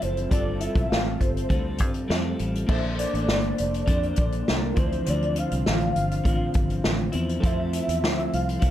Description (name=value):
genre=indie pop, bedroom pop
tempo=101 BPM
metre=4/4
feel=straight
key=unclear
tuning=A4 = 440 Hz
part: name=soft octave-layered synth lead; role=melody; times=0.0-8.7 s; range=Bb4 to F5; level=-30 LUFS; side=equal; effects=phaser, ensemble chorus, tape echo
part: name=electric guitar at the edge of break-up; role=accompaniment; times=0.0-8.7 s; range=D3 to C5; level=-30 LUFS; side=left 2 dB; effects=lush chorus, vibrato effect
part: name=warm analog keys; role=accompaniment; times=0.0-8.7 s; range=E3 to C5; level=-34 LUFS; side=right 4 dB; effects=chorus, cassette tape
part: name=fingered electric bass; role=bass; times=0.0-8.7 s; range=F1 to G2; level=-28 LUFS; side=equal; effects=none
part: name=unplugged drum kit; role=drums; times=0.0-8.7 s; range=crash cymbal, hi-hat, kick drum, snare drum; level=-25 LUFS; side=equal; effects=none
room=light reverb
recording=dark, warm production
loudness=-22 LUFS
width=side -12 dB against mid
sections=0.0-2.7 A section; 2.7-8.7 B section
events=none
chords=0.3 G9sus4; 2.7 Bbmaj9; 4.8 Dm9; 7.4 Fmaj7